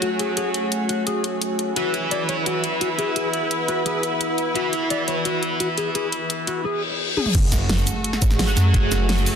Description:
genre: dark technical drum and bass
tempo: 172 BPM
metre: 4/4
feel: straight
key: F# minor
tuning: A4 = 436 Hz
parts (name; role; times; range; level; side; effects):
- deep dark ambient pad; sustained chords; 0.0-9.4 s; A3 to G#5; -29 LUFS; equal; chorus, built-in reverb, sidechain pumping
- mellow electric guitar; arpeggios; 0.0-7.3 s; F#4 to D5; -28 LUFS; left 3 dB; phaser, sidechain pumping, low-pass filter, ping-pong delay
- distorted electric guitar; stabs; 0.0-9.4 s; E4 to F#5; -27 LUFS; right 2 dB; distortion, ping-pong delay
- dubstep drum kit; drums; 0.0-9.3 s; cabasa, crash cymbal, hi-hat, snare drum, toms; -25 LUFS; equal; studio reverb
- rich symphonic string section; texture; 0.0-9.4 s; A3 to B4; -27 LUFS; left 1 dB; sidechain pumping
- reverse cymbal and impact; sound effects; 6.7-8.7 s; none; -28 LUFS; left 2 dB; none
- snarling distorted saw bass; bass; 7.3-9.3 s; F#1 to F#2; -20 LUFS; equal; distortion, sidechain pumping
- electronic kick drum; drums; 7.3-8.8 s; none; -20 LUFS; equal; studio reverb
room: light reverb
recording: dense, heavily limited modern master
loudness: -19 LUFS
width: side -7 dB against mid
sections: 0.0-7.3 A section; 7.3-9.4 B section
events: reverse cymbal 6.7-7.3; drum fill 7.2; drop 7.3-9.4; impact 7.3-8.7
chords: 0.0 F#madd9; 1.8 E; 7.3 F#madd9

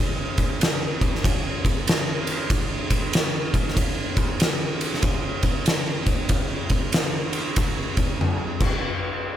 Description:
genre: metal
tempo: 95 BPM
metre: 4/4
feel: swing 64% on 8ths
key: none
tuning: none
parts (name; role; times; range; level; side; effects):
- oversized low-tuned drum kit; drums; 0.4-8.7 s; crash cymbal, kick drum, ride cymbal, snare drum, toms; -21 LUFS; equal; none
room: little or no reverb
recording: none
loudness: -21 LUFS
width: side -11 dB against mid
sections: 0.0-8.8 A section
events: drum fill 8.2-8.8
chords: none

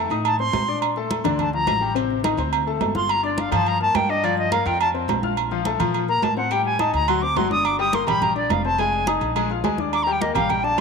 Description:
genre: Afro-Cuban jazz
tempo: 211 BPM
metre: 4/4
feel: straight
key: G minor, Bb major from 5.4 s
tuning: A4 = 440 Hz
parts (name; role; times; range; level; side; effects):
- clear baby grand piano; accompaniment; 0.0-10.8 s; C3 to F6; -25 LUFS; left 10 dB; none
- upright bass; bass; 0.0-10.8 s; F1 to Bb2; -29 LUFS; equal; none
- agogo bells and timbales; percussion; 0.1-10.8 s; none; -26 LUFS; right 14 dB; none
- congas; percussion; 0.2-10.8 s; none; -31 LUFS; right 1 dB; none
- bright reedy silver concert flute; melody; 0.3-10.8 s; D5 to Eb6; -23 LUFS; equal; none
room: moderate plate reverb, RT60 3.5 s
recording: 1960s-style stereo with parts hard left and right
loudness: -19 LUFS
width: side -5 dB against mid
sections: 0.0-5.4 A section; 5.4-10.8 A section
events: flute solo 0.0-10.8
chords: 0.0 F7 (rootless); 0.8 Bbmaj7; 2.0 Adim; 2.5 D5; 3.1 Gm7; 4.8 F5; 5.4 Bbsus2; 6.5 Ebmaj7#11; 7.1 D7b9; 7.7 Gm7; 8.8 Fm7; 9.4 Bb7; 9.9 Ebmaj7

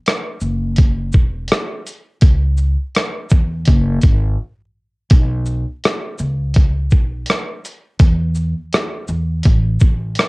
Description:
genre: lo-fi hip hop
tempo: 83 BPM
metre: 4/4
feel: swing 64% on 16ths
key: unclear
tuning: A4 = 439 Hz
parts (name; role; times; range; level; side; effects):
- dusty soul sampler-style drum kit; drums; 0.1-10.3 s; hi-hat, kick drum, rim click, shaker; -13 LUFS; equal; cassette tape
- upright bass; bass; 0.4-10.1 s; E1 to E2; -18 LUFS; equal; none
room: little or no reverb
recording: home recording on cassette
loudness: -14 LUFS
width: side -27 dB against mid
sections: 0.0-5.1 A section; 5.1-10.3 B section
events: break 4.4-5.1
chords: none

